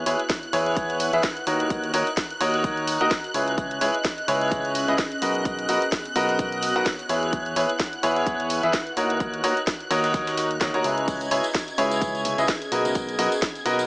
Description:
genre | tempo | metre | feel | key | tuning
piano house | 128 BPM | 4/4 | swing 57% on 16ths | C# dorian | A4 = 441 Hz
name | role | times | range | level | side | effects
analog string pad | sustained chords | 0.0-13.9 s | F#6 to G#6 | -31 LUFS | equal | ensemble chorus, sidechain pumping
clear baby grand piano | riff | 0.0-13.9 s | D#4 to F#5 | -23 LUFS | equal | sidechain pumping, tape echo
fat analog bass | bass | 0.0-13.9 s | B1 to E2 | -31 LUFS | equal | sidechain pumping
warbly tape-like pad | texture | 0.0-13.9 s | B3 to A#5 | -33 LUFS | equal | chorus, built-in reverb, sidechain pumping
breakbeat sampler-style drum kit | drums | 0.1-13.9 s | hi-hat, snare drum | -38 LUFS | equal | none
house drum kit | drums | 0.1-13.9 s | hi-hat, snare drum | -29 LUFS | equal | none
electronic kick drum | drums | 0.3-13.5 s | none | -29 LUFS | equal | none
tambourine and congas | percussion | 11.1-13.9 s | none | -37 LUFS | equal | none
room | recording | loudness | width
light reverb, digital ambience | small speaker sound | -21 LUFS | side -29 dB against mid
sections
0.0-13.9 A section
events
none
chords
0.0 E6; 1.7 D#m7; 3.6 C#m7; 5.5 Bmaj7; 7.1 E6; 9.2 D#m7; 11.1 C#m7; 13.0 Bmaj7

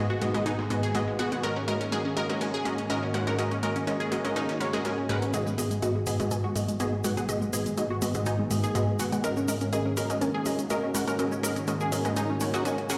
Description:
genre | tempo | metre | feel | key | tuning
progressive house | 123 BPM | 4/4 | straight | G# minor | A4 = 441 Hz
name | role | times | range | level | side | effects
evolving wavetable pad | sustained chords | 0.0-13.0 s | G#2 to G#4 | -36 LUFS | equal | phaser, built-in reverb
unison pluck | arpeggios | 0.0-13.0 s | G#3 to B4 | -34 LUFS | equal | phaser, delay
unison pluck | stabs | 0.0-13.0 s | G#2 to G#5 | -31 LUFS | equal | delay
breakbeat sampler-style drum kit | drums | 0.2-5.2 s | hi-hat, snare drum | -48 LUFS | equal | none
electronic hi-hat | drums | 0.2-13.0 s | none | -43 LUFS | equal | none
egg shaker | percussion | 5.3-13.0 s | none | -41 LUFS | equal | none
room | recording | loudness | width
moderate recital hall reverb, RT60 1.6 s, digital ambience | played on a big sound system in a bare room, large studio reverb | -28 LUFS | mono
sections
0.0-5.3 A section; 5.3-13.0 B section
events
build-up 5.3-13.0; filter sweep on synth pluck 5.3-13.0; filter sweep on ambient pad 5.3-13.0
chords
0.0 G#m7; 1.4 F#6/G#; 5.3 G#m7; 9.2 F#6/G#

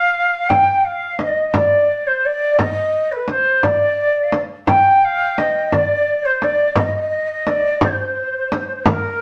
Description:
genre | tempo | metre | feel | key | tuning
Persian modal ensemble | 58 BPM (dotted quarters) | 6/8 | straight | unclear | A4 = 440 Hz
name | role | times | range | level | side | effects
breathy mellow silver concert flute | melody | 0.0-9.2 s | Bb4 to G5 | -18 LUFS | equal | none
breathy bright ney | second line | 0.0-9.2 s | A4-49c to G5 | -26 LUFS | equal | none
frame drum | percussion | 0.5-9.0 s | none | -22 LUFS | equal | none
room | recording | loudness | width
moderate studio reverb, RT60 0.8 s | none | -17 LUFS | mono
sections
0.0-9.2 A section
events
none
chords
none

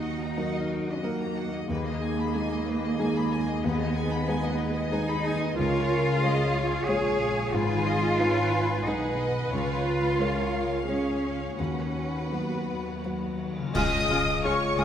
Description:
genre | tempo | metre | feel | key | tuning
cinematic, emotional film score for orchestra | 81-95 BPM | 3/4 | rubato | G# dorian | A4 = 440 Hz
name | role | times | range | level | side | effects
rich symphonic violin section | melody | 0.0-14.8 s | D#5 to D#6 | -36 LUFS | left 2 dB | none
rich studio violin section | second line | 0.0-14.8 s | G#4 to B5 | -35 LUFS | left 3 dB | none
felt-muted upright piano | accompaniment | 0.0-14.8 s | C#2 to C#5 | -32 LUFS | left 1 dB | none
rich studio viola section | accompaniment | 0.0-14.8 s | G#3 to B4 | -35 LUFS | equal | none
concert harp | arpeggios | 0.0-14.8 s | G#2 to B5 | -34 LUFS | left 5 dB | none
rich studio cello section | bass | 0.0-14.8 s | C#2 to G#4 | -30 LUFS | right 2 dB | none
rich studio double bass section | bass | 0.0-14.8 s | G#1 to D#2 | -33 LUFS | right 3 dB | none
cymbal swell, clash cymbals and concert bass drum | percussion | 9.5-14.8 s | none | -36 LUFS | equal | none
mellow clarinet | second line | 13.7-14.8 s | C#5 to D#5 | -34 LUFS | left 2 dB | none
mellow flute section | second line | 13.8-14.8 s | G#5 | -36 LUFS | left 4 dB | none
mellow oboe | second line | 13.8-14.8 s | E#5 | -34 LUFS | equal | none
dark French horn section | sustained chords | 13.8-14.8 s | G#3 to E#4 | -32 LUFS | left 2 dB | none
room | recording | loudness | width
wet scoring stage reverb, RT60 1.6 s | none | -24 LUFS | side -9 dB against mid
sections
0.0-13.8 A section; 13.8-14.8 B section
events
band accent 13.8-14.4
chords
0.0 D#m; 1.7 G#m/D#; 5.6 C#; 7.5 G#m; 9.5 C#; 11.6 B/D#; 13.8 C#

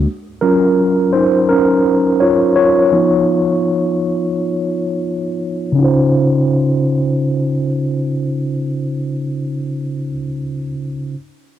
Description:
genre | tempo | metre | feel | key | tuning
hip hop | 84 BPM | 4/4 | swing 62% on 16ths | Db major | A4 = 440 Hz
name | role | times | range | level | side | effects
mellow tine electric piano | accompaniment | 0.0-11.2 s | Db3 to Db5 | -14 LUFS | equal | medium stereo tremolo, cassette tape, low-pass filter
room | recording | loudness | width
light reverb, digital ambience | dry, gritty hardware recording, transformer saturation, cassette tape | -14 LUFS | side -11 dB against mid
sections
0.0-5.8 A section; 5.8-8.6 B section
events
tine electric piano solo 0.0-5.8; filter sweep on tine electric piano 0.0-5.8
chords
0.1 Ebm9; 2.9 Db7; 5.8 Dbmaj7

